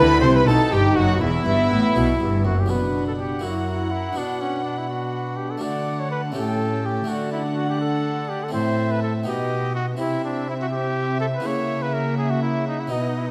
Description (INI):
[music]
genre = classical, baroque-style concerto movement with solo episodes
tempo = 82 BPM (dotted quarters)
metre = 6/8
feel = straight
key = B minor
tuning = A4 = 440 Hz
[part]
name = warm chamber violin section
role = melody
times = 0.0-13.3 s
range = E5 to C6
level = -36 LUFS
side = equal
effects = none
[part]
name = warm trumpet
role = melody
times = 0.0-13.3 s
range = C#4 to D5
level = -29 LUFS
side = equal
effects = none
[part]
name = rich chamber violin section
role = second line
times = 0.0-13.3 s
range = E4 to G5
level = -31 LUFS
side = equal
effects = none
[part]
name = dark studio viola section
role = accompaniment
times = 0.0-13.3 s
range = A#3 to E4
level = -30 LUFS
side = equal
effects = none
[part]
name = harpsichord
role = accompaniment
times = 0.0-13.3 s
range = E2 to G4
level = -32 LUFS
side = equal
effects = none
[part]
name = rich chamber double bass section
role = bass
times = 0.0-2.7 s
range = E1 to D2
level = -29 LUFS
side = equal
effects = none
[part]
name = warm chamber cello section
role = bass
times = 0.0-13.3 s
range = E2 to D3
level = -27 LUFS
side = equal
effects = none
[sound]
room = moderate concert hall reverb, RT60 2.0 s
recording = none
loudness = -22 LUFS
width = mono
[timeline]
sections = 0.0-2.7 A section; 2.7-13.3 B section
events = none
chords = 0.5 B; 1.2 Em; 2.7 Bm; 3.4 F#7; 4.2 Bm; 5.6 D; 6.4 A7; 7.1 D; 8.5 Am; 9.3 B; 10.0 C; 11.4 F#7/C#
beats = 0.47 | 1.22 1.96 | 2.71 3.44 | 4.17 4.90 | 5.63 6.36 | 7.09 7.81 | 8.54 9.26 | 9.98 10.71 | 11.43 12.17 | 12.91